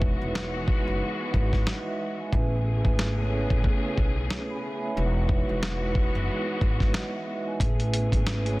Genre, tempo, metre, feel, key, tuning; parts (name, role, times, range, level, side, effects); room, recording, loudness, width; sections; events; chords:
hip hop, boom-bap hip-hop; 91 BPM; 4/4; swing 58% on 16ths; A lydian; A4 = 441 Hz
vibraphone with soft mallets; accompaniment; 0.0-8.6 s; G#3 to B5; -31 LUFS; right 2 dB; cassette tape, high-pass filter, low-pass filter
dark studio string section; sustained chords; 0.0-8.6 s; C#3 to G#4; -34 LUFS; left 2 dB; high-pass filter, low-pass filter
upright bass; bass; 0.0-8.6 s; E1 to B1; -28 LUFS; equal
dusty soul sampler-style drum kit; drums; 0.0-8.6 s; hi-hat, kick drum, snare drum; -25 LUFS; equal
small room ambience; dense, heavily limited modern master; -24 LUFS; side -20 dB against mid
0.0-8.6 A section
break 0.0-7.6
0.0 Emaj9; 2.3 Amaj9; 5.0 Emaj9; 7.6 Amaj9